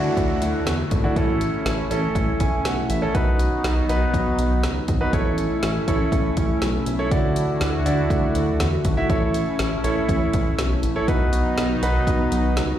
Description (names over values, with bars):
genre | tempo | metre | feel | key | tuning
synth-pop | 121 BPM | 4/4 | straight | unclear | A4 = 439 Hz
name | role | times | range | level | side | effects
clear concert grand piano | accompaniment | 0.0-12.6 s | C#4 to G#5 | -25 LUFS | right 2 dB | none
chorused pulse-width pad | sustained chords | 0.0-12.8 s | D3 to F#4 | -25 LUFS | left 1 dB | none
chorused synth bass | bass | 0.0-12.7 s | G#1 to E2 | -24 LUFS | equal | none
downlifter | sound effects | 0.0-3.1 s | none | -37 LUFS | right 1 dB | none
deep house drum kit | drums | 0.2-12.7 s | hi-hat, kick drum, snare drum | -25 LUFS | equal | none
room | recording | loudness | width
light reverb | played on a big sound system in a bare room, large studio reverb | -19 LUFS | side -11 dB against mid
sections
0.0-12.8 A section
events
grand piano fill 2.2-3.1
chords
0.0 Dadd9; 1.2 A; 3.1 B; 5.1 A; 7.1 Dadd9; 9.1 A; 11.1 B